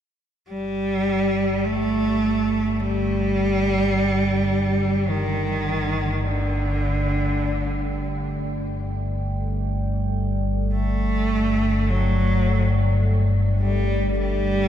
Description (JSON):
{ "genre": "dark ambient drone", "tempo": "free time", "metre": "none", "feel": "none", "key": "unclear", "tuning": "A4 = 439 Hz", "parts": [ { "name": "dark analog pad", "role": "sustained chords", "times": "2.7-14.7 s", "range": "A3 to G5", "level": "-34 LUFS", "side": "equal", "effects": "chorus, phaser, shimmer reverb" }, { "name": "rich cello", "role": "melody", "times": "0.5-14.7 s", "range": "D3 to A3", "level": "-22 LUFS", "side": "right 1 dB", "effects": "shimmer reverb, tape echo" }, { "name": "analog drone", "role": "drone", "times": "0.7-14.7 s", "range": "G1 to G2", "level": "-23 LUFS", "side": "equal", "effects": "lush chorus" } ], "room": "wet cathedral reverb, RT60 4.8 s", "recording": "none", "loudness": "-20 LUFS", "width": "side -10 dB against mid", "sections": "0.5-14.7 A section", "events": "fade-in on analog synth pad 0.5-14.7", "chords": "0.5 Gsus2", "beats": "free time" }